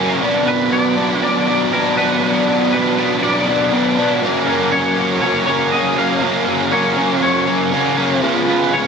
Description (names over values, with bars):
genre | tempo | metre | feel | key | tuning
rock | 120 BPM | 4/4 | straight | F# major | A4 = 441 Hz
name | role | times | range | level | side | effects
overdriven electric guitar | riff | 0.0-8.9 s | F#2 to E#4 | -14 LUFS | equal | analog chorus
twangy electric guitar | melody | 0.5-8.9 s | A#4 to E#5 | -22 LUFS | equal | analog chorus, tape echo
room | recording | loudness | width
moderate plate reverb, RT60 3.3 s | none | -14 LUFS | side -6 dB against mid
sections
0.0-8.9 A section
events
none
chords
0.2 Bm; 4.2 F#; 8.2 C#7